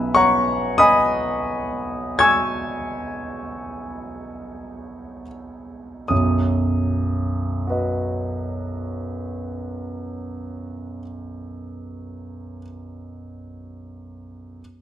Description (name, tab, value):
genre	classical, impressionist solo piano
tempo	34-49 BPM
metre	4/4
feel	rubato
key	B major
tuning	A4 = 438 Hz
part	warm grand piano	solo	0.0-14.6 s	B1 to G#6	-21 LUFS	equal	none
room	moderate recital hall reverb, RT60 1.5 s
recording	close, detailed microphones, faint mains hum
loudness	-19 LUFS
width	side -11 dB against mid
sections	0.0-6.1 A section; 6.1-12.4 B section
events	slowing down 0.0-6.1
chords	0.0 Badd9; 6.1 B